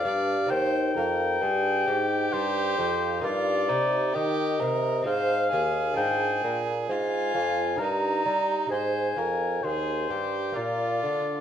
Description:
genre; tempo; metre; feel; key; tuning
classical, baroque-style sonata movement with continuo; 66 BPM; 3/4; straight; C minor, Eb major from 3.2 s; A4 = 438 Hz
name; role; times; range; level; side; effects
warm oboe; melody; 0.0-11.4 s; C5 to Bb5; -28 LUFS; left 5 dB; none
warm violin; second line; 0.0-11.4 s; Eb4 to D5; -30 LUFS; right 6 dB; none
lute; accompaniment; 0.0-11.4 s; Eb2 to C5; -32 LUFS; equal; none
mellow bassoon; bass; 0.0-11.4 s; Eb2 to G3; -29 LUFS; right 2 dB; none
room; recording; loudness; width
moderate large studio reverb, RT60 1.2 s; dark, warm production; -24 LUFS; side -9 dB against mid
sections
0.0-11.4 A section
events
none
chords
0.0 G7; 0.5 Cm/Eb; 3.2 Eb/G; 5.1 Ab; 6.0 Bb7/Ab; 7.8 Eb/G; 8.7 Ab; 10.6 Bb

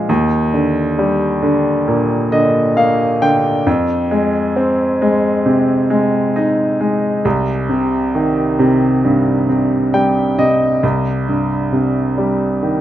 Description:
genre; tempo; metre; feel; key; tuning
pop; 67 BPM; 4/4; straight; C minor; A4 = 440 Hz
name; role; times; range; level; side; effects
clear grand piano; solo; 0.0-12.8 s; C2 to G5; -13 LUFS; equal; digital delay
room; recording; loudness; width
light reverb, studio reverb; rough home demo mix; -13 LUFS; side -12 dB against mid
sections
0.0-10.8 A section; 10.8-12.8 B section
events
grand piano fill 1.9-3.7, 9.5-10.8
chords
0.1 Ebmaj7; 3.7 Fm7; 7.3 Cm; 10.8 C5

